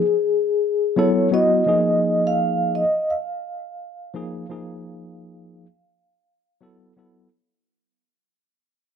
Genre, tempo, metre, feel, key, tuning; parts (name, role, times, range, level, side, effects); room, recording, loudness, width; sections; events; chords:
hip hop; 85 BPM; 4/4; swing 64% on 16ths; A4 = 440 Hz
vibraphone with soft mallets; melody; 0.0-6.6 s; Ab4 to F5; -20 LUFS; left 2 dB; plate reverb, analog delay
tine electric piano; accompaniment; 0.0-7.3 s; F3 to A4; -22 LUFS; equal; overdrive, fast stereo tremolo, plate reverb
moderate small room reverb, RT60 0.5 s; -17 LUFS; side -7 dB against mid
0.0-7.3 A section
fade-out 0.0-7.3
0.0 N.C.; 1.0 B9sus4; 1.7 Bb7sus4; 6.6 B7sus4